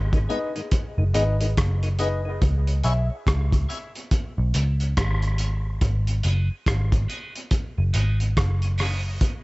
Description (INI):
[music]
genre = dub reggae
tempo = 71 BPM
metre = 4/4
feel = swing 61% on 16ths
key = unclear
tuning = A4 = 439 Hz
[part]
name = vintage muted picked electric bass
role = bass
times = 0.0-9.2 s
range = F#1 to C#2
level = -22 LUFS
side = equal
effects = none
[part]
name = tonewheel organ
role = accompaniment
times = 0.1-9.1 s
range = G#2 to E4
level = -34 LUFS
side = left 2 dB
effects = overdrive, slow rotary speaker, high-pass filter
[part]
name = cloth-damped thuddy drum kit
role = drums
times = 0.1-9.4 s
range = hi-hat, kick drum, rim click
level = -25 LUFS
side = equal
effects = none
[part]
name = dark upright piano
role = stabs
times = 0.3-9.0 s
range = D#4 to E5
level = -31 LUFS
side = left 2 dB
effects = high-pass filter, dub echo
[part]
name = clean electric guitar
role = accompaniment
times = 6.2-9.1 s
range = B3 to G#4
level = -38 LUFS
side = right 3 dB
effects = high-pass filter, dub echo
[sound]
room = small room ambience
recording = nothing above 7.9 kHz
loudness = -21 LUFS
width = side -23 dB against mid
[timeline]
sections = 0.0-9.2 A section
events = break 0.0-5.8; filter sweep 0.0-9.2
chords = 0.0 G#m; 2.4 C#m; 5.8 G#m